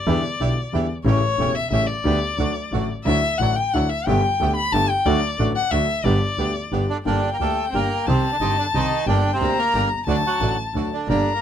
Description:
tango; 180 BPM; 3/4; rubato; G major, G harmonic minor from 7.1 s; A4 = 440 Hz
warm violin; second line; 0.0-11.4 s; C#5 to B5; -23 LUFS; left 4 dB
warm concert grand piano; accompaniment; 0.1-11.2 s; E1 to G4; -25 LUFS; left 3 dB
bandoneon; stabs; 0.1-11.2 s; F#3 to G4; -29 LUFS; right 6 dB
rich double bass; bass; 0.1-11.2 s; E1 to E2; -24 LUFS; right 2 dB
bandoneon; melody; 6.9-11.4 s; C3 to Bb4; -24 LUFS; right 4 dB
moderate booth ambience, RT60 0.2 s; dark, warm production; -18 LUFS; side -9 dB against mid
0.0-7.1 A section; 7.1-11.4 B section
violin solo 0.0-7.1
0.1 Em7; 1.1 A7; 2.0 G/D; 2.4 D; 3.1 Dadd9; 4.1 Gadd9; 5.1 D; 6.1 G; 7.1 Gm; 8.1 Cm; 9.1 Gm; 10.1 D

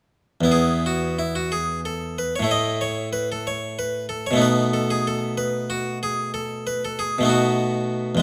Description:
classical, baroque-style suite movement for harpsichord; 62 BPM (dotted quarters); 12/8; rubato; A4 = 440 Hz
harpsichord; solo; 0.4-8.2 s; E2 to D#5; -23 LUFS; equal
moderate recital hall reverb, RT60 1.4 s; close, detailed microphones; -23 LUFS; mono
0.5-8.2 A section
0.5 E5; 2.5 A5; 4.4 B7

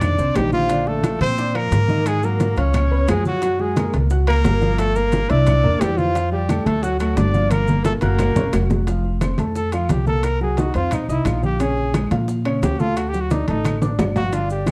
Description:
Afro-Cuban jazz; 176 BPM; 4/4; straight; A4 = 439 Hz
clear trumpet; melody; 0.0-14.7 s; Eb4 to D5; -26 LUFS; equal
breathy tenor saxophone; second line; 0.0-8.7 s; F3 to D4; -29 LUFS; equal
warm concert grand piano; accompaniment; 0.0-14.7 s; Db3 to Gb6; -28 LUFS; equal
upright bass; bass; 0.0-14.7 s; F1 to Bb2; -23 LUFS; equal
bongos; percussion; 0.0-14.7 s; -31 LUFS; equal
claves; percussion; 0.0-14.7 s; -43 LUFS; equal
congas; percussion; 0.0-14.7 s; -28 LUFS; equal
maracas; percussion; 0.0-14.7 s; -47 LUFS; equal
timbales; percussion; 0.0-14.7 s; -32 LUFS; equal
moderate large studio reverb, RT60 1.0 s; dark, warm production; -19 LUFS; mono
0.0-8.9 A section; 8.9-14.7 B section
drum fill 7.5-8.9, 13.5-14.3; trumpet solo 8.9-14.7
0.0 F5; 0.7 Bbmaj9; 2.1 Ab5; 2.7 Db7; 3.4 Gbadd9; 4.8 Gm7; 5.5 C9; 6.2 Fadd9; 6.8 D; 7.5 Gm7; 8.2 Gb; 8.9 F; 10.2 Cm7b5; 10.9 F5; 11.6 Bbm7; 13.0 D

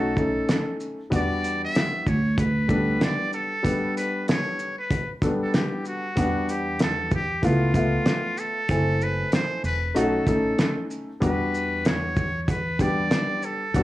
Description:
hip hop, jazz-hop; 95 BPM; 4/4; swing 60% on 16ths; E dorian; A4 = 440 Hz
trumpet with metal mute; melody; 0.0-13.8 s; E#4 to E5; -28 LUFS; equal
warm grand piano; accompaniment; 0.0-13.8 s; F#3 to G#5; -26 LUFS; left 1 dB
upright bass; bass; 0.0-13.8 s; E1 to E2; -27 LUFS; equal; tube saturation
cloth-damped thuddy drum kit; drums; 0.2-13.8 s; hi-hat, kick drum, shaker, snare drum; -25 LUFS; equal
moderate small room reverb, RT60 0.5 s; dry, gritty hardware recording, transformer saturation, small room reverb; -22 LUFS; side -15 dB against mid
0.0-6.2 A section; 6.2-13.8 A section
0.0 B7; 1.1 Em9 (rootless); 6.2 Em9; 7.4 C#7alt; 8.7 F#m7b5; 10.0 B7; 11.2 Em9

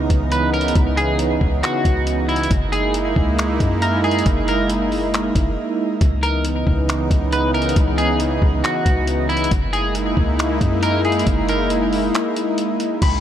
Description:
hip hop, atmospheric cloud-rap; 137 BPM; 4/4; half-time; A4 = 440 Hz
warm analog pad; sustained chords; 0.0-13.2 s; C#3 to E4; -20 LUFS; right 1 dB; chorus, sidechain pumping
soft 808-style bass; bass; 0.0-13.2 s; F#1 to F#2; -22 LUFS; equal
trip hop sampler-style drum kit; drums; 0.1-13.1 s; crash cymbal, finger snaps, hi-hat, kick drum; -22 LUFS; equal
electric guitar at the edge of break-up; melody; 0.3-11.7 s; E4 to B4; -24 LUFS; equal; analog chorus, tape echo
Celtic harp; arpeggios; 13.0-13.2 s; B5; -22 LUFS; left 6 dB
light reverb; -16 LUFS; side -10 dB against mid
0.0-13.0 A section
break 5.6-6.0, 12.1-13.0
0.0 C#m9; 2.5 F#13; 6.0 C#m9; 9.5 F#13

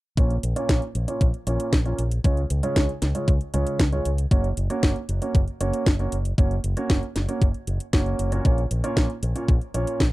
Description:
italo disco; 116 BPM; 4/4; straight; Bb minor; A4 = 440 Hz
warm concert grand piano; stabs; 0.2-10.0 s; Bb2 to Db5; -28 LUFS; right 2 dB; low-pass filter, tape echo
fingered electric bass with an envelope filter; bass; 0.2-10.1 s; Gb1 to Db2; -25 LUFS; equal
electronic kick drum; drums; 0.2-10.1 s; -21 LUFS; equal
house drum kit; drums; 0.2-10.1 s; hi-hat, snare drum; -27 LUFS; equal; overdrive
little or no reverb; dry, close 1970s-style studio recording; -21 LUFS; side -19 dB against mid
0.2-10.1 A section
0.2 Bbm; 2.2 Db; 4.3 Gb; 8.5 Bbm

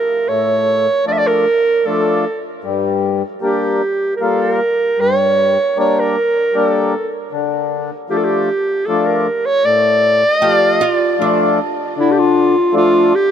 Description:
klezmer; 77 BPM; 3/4; straight; D harmonic minor; A4 = 441 Hz
mellow clarinet; melody; 0.0-13.3 s; E4 to E5; -15 LUFS; right 1 dB
mellow accordion; accompaniment; 0.3-13.1 s; G2 to F4; -18 LUFS; left 4 dB
oud; second line; 10.4-11.9 s; D4 to G4; -21 LUFS; right 7 dB
light reverb; -13 LUFS; side -8 dB against mid
0.0-12.0 A section; 12.0-13.3 B section
0.0 Dm; 2.6 Gm; 7.3 Dm

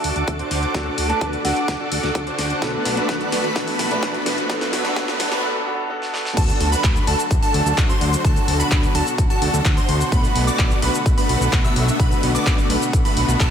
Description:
EDM, festival progressive house; 128 BPM; 4/4; straight; A4 = 441 Hz
clear concert grand piano; accompaniment; 0.0-6.4 s; A3 to B4; -26 LUFS; equal; sidechain pumping, analog delay
lush unison pad; sustained chords; 0.0-13.5 s; B2 to D6; -27 LUFS; equal; chorus, sidechain pumping
supersaw chords; riff; 0.0-13.5 s; A3 to E5; -24 LUFS; equal; wide subtle chorus, sidechain pumping, low-pass filter, analog delay
fat analog bass; bass; 0.0-13.5 s; B1 to D2; -24 LUFS; equal; sidechain pumping
big-room dance drum kit; drums; 0.0-13.5 s; cabasa, crash cymbal, handclaps, hi-hat, snare drum; -26 LUFS; left 1 dB; high-pass filter on snare, high-pass filter on hats, high-pass filter on cymbals, high-pass filter on perc
riser; sound effects; 0.4-5.4 s; -33 LUFS; right 1 dB
electronic kick drum; drums; 0.3-13.5 s; -19 LUFS; equal; high-pass filter on kick
folk marimba with medium hard mallets; melody; 1.1-1.9 s; F#5 to A5; -28 LUFS; right 3 dB; analog delay
plucky unison lead; arpeggios; 6.4-13.5 s; A5 to E6; -25 LUFS; equal; analog chorus, sidechain pumping, analog delay
moderate lush hall reverb, RT60 1.6 s; dreamy mix soaked in reverb, high-pass filter; -17 LUFS; side -8 dB against mid
0.0-6.4 A section; 6.4-13.5 B section
build-up 0.0-6.4; drum fill 0.0-5.4, 6.0-6.4; filter sweep on supersaw synth 0.0-6.4; riser 0.4-5.4; break 5.4-6.4; drop 6.4-13.5
0.0 D; 2.6 Bm7; 6.4 D; 10.1 Bm7

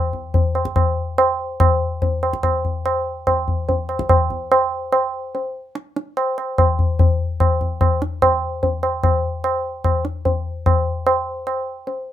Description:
indian classical; 146 BPM; 4/4; straight
tabla; percussion; 0.1-12.0 s; -17 LUFS; equal
moderate small room reverb, RT60 0.5 s; minimal, uncompressed stereo recording; -17 LUFS; side -11 dB against mid
0.0-8.2 A section; 8.2-12.1 B section
speeding up 0.0-12.1

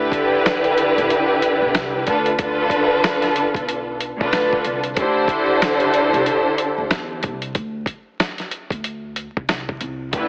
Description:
hip hop, boom-bap hip-hop; 93 BPM; 4/4; swing 61% on 16ths; A4 = 440 Hz
warm studio string section; accompaniment; 0.0-10.3 s; D3 to C5; -20 LUFS; equal; cassette tape, high-pass filter, low-pass filter
upright bass; bass; 0.0-10.3 s; A1 to E2; -35 LUFS; equal
dusty soul sampler-style drum kit; drums; 0.1-10.3 s; hi-hat, kick drum, snare drum; -25 LUFS; equal
light reverb, studio reverb; heavily compressed radio sound, vinyl crackle, AM radio sound; -20 LUFS; mono
0.0-10.3 A section
break 7.6-10.1
0.0 Cmaj9/D; 2.1 Bm7b5; 5.0 C69; 7.6 Csus2

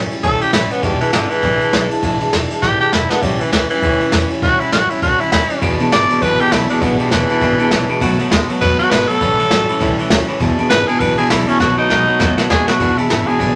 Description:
rockabilly; 201 BPM; 4/4; swing 60% on 8ths; E mixolydian; A4 = 439 Hz
picked steel-string acoustic guitar; accompaniment; 0.0-13.6 s; E2 to F#4; -24 LUFS; equal
upright bass; bass; 0.0-13.5 s; E1 to E2; -26 LUFS; equal
jazz brush drum kit; drums; 0.1-13.5 s; kick drum, ride cymbal, snare drum; -21 LUFS; equal
raspy tenor saxophone; melody; 0.2-13.6 s; D3 to D5; -18 LUFS; equal
clean electric guitar; riff; 5.6-13.6 s; E2 to G#3; -21 LUFS; equal
wet studio reverb, RT60 0.6 s; -15 LUFS; mono
0.0-12.8 A section
tenor saxophone solo 0.0-12.8; drum fill 2.6-3.2, 11.6-12.8
0.0 A7; 0.8 E7; 3.2 A7; 5.6 E7; 8.0 B7; 9.2 A7; 10.4 E7; 11.6 B7; 12.8 E7

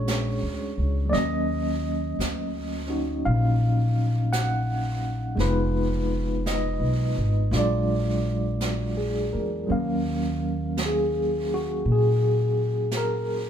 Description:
jazz ballad; 56 BPM; 4/4; swing 67% on 8ths; Eb minor; A4 = 440 Hz
barky tine electric piano; accompaniment; 0.0-13.5 s; Gb3 to Gb5; -26 LUFS; equal; overdrive, medium tremolo
upright bass; bass; 0.0-13.5 s; F1 to Bb2; -26 LUFS; equal
jazz brush drum kit; drums; 0.1-13.5 s; brushed snare drum, hi-hat, snare drum; -36 LUFS; right 3 dB
wet studio reverb, RT60 0.9 s; band playing live in one room; -22 LUFS; side -9 dB against mid
0.0-9.7 A section; 9.7-13.5 B section
0.0 Bb7alt; 1.1 Ebm9; 5.4 Fm7b5; 7.5 Bb7b13; 9.7 Ebm9

